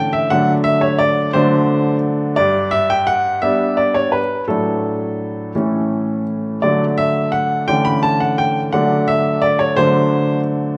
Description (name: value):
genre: classical-period piano sonatina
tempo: 57 BPM (dotted quarters)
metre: 6/8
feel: straight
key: D major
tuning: A4 = 438 Hz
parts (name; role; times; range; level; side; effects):
- clear baby grand piano; solo; 0.0-10.8 s; G2 to B5; -17 LUFS; equal; none
room: wet recital hall reverb, RT60 1.5 s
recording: none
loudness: -17 LUFS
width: mono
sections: 0.0-10.8 A section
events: none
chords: 0.3 D; 2.4 G; 4.5 D/A; 5.6 A; 6.6 D; 7.7 A/D; 8.7 D